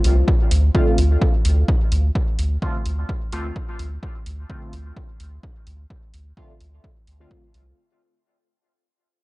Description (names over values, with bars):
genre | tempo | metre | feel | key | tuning
dub techno | 128 BPM | 4/4 | swing 54% on 16ths | D minor | A4 = 439 Hz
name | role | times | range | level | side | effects
soft dub sub bass | bass | 0.0-7.7 s | C2 to D2 | -19 LUFS | equal | tube saturation, sidechain pumping
electronic hi-hat | drums | 0.0-7.6 s | none | -32 LUFS | right 2 dB | none
electronic kick drum | drums | 0.3-7.4 s | none | -21 LUFS | equal | none
resonant sweep polysynth | stabs | 0.7-7.4 s | D3 to F4 | -27 LUFS | equal | chorus, phaser, sidechain pumping, dub echo
room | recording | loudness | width
digital ambience | dry, gritty hardware recording, nothing above 10.9 kHz | -17 LUFS | side -21 dB against mid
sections
0.0-7.8 A section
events
fade-out 0.0-7.8; filter sweep on analog polysynth 0.0-7.8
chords
0.0 Dm7